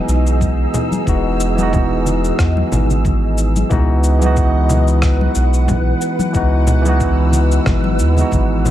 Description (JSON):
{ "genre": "sunset chillout", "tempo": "91 BPM", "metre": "4/4", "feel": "swing 55% on 16ths", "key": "unclear", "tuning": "A4 = 444 Hz", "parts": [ { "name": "tine electric piano", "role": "accompaniment", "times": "0.0-8.7 s", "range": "E3 to F#4", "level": "-19 LUFS", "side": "moving between left 3 dB and right 4 dB", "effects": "auto-pan, tape echo" }, { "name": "soft string machine", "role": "sustained chords", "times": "0.0-8.7 s", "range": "E3 to E6", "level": "-23 LUFS", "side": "equal", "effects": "phaser, ensemble chorus" }, { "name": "round analog bass", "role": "bass", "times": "0.1-8.7 s", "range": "E1 to E2", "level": "-15 LUFS", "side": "equal", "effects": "none" }, { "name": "electronic cabasa, congas and rim click", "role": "drums", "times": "0.1-8.7 s", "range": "none", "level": "-23 LUFS", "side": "left 2 dB", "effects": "none" }, { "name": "electronic kick drum", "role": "drums", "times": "0.4-8.5 s", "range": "none", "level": "-20 LUFS", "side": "equal", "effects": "none" }, { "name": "congas", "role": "percussion", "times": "0.4-8.5 s", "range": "none", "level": "-24 LUFS", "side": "left 3 dB", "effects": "none" } ], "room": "light reverb", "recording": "echo-heavy mix", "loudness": "-13 LUFS", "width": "side -12 dB against mid", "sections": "0.0-8.7 A section", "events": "none", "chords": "0.0 Emaj7; 3.7 C#m11" }